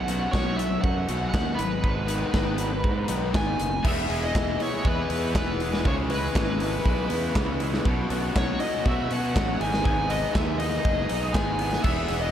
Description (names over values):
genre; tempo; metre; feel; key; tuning
indie rock; 120 BPM; 4/4; straight; unclear; A4 = 438 Hz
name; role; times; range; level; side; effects
smooth overdriven lead guitar; melody; 0.0-12.3 s; B4 to G#5; -30 LUFS; left 1 dB; analog delay
overdriven electric guitar; riff; 0.0-12.3 s; E2 to G#4; -34 LUFS; right 7 dB; analog chorus, analog delay
fuzz fingered electric bass; bass; 0.0-12.3 s; E1 to B2; -29 LUFS; equal; overdrive
thick fuzz guitar; riff; 0.1-12.3 s; D#3 to G#4; -32 LUFS; left 6 dB; distortion
big rock drum kit; drums; 0.1-12.2 s; crash cymbal, hi-hat, kick drum, snare drum; -27 LUFS; equal; none
ensemble organ-string; sustained chords; 3.9-12.3 s; E4 to D#6; -39 LUFS; right 2 dB; none
group handclap; percussion; 4.4-11.5 s; none; barely audible; none; none
room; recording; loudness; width
moderate huge ambient reverb, RT60 6.5 s; dreamy mix soaked in reverb; -23 LUFS; side -10 dB against mid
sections
0.0-3.9 A section; 3.9-12.3 B section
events
none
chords
0.0 Bsus2; 1.6 G#m; 3.9 E; 5.9 C#m7; 7.9 Bsus2; 9.6 G#m